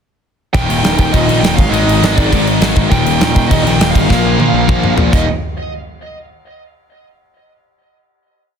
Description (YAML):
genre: punk rock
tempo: 203 BPM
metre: 4/4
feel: straight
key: Eb major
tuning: A4 = 443 Hz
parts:
  - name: bluesy overdriven lead guitar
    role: melody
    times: 0.5-5.3 s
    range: D5 to G5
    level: -20 LUFS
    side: right 4 dB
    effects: distortion, tape echo
  - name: overdriven semi-hollow guitar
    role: riff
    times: 0.5-5.2 s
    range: Eb2 to Bb3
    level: -16 LUFS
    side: left 11 dB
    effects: none
  - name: tight distorted guitar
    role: riff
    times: 0.5-5.3 s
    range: Eb2 to Eb4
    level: -20 LUFS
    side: right 15 dB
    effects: distortion
  - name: tight distorted guitar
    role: riff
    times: 0.5-5.2 s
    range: Eb2 to Bb3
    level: -22 LUFS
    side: right 2 dB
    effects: none
  - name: fuzz picked electric bass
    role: bass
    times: 0.5-5.3 s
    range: Eb1 to Bb1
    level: -17 LUFS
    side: right 1 dB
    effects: overdrive
  - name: big rock drum kit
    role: drums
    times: 0.5-5.2 s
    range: crash cymbal, kick drum, snare drum, toms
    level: -14 LUFS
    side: equal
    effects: none
room: light reverb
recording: dense, heavily limited modern master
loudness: -10 LUFS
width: side -7 dB against mid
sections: 0.5-5.3 chorus; 5.3-6.5 final hit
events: drum fill 4.1-5.3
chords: 0.5 Eb; 1.6 Ab5; 2.9 Eb; 4.1 Bb5; 5.1 Eb; 5.3 N.C.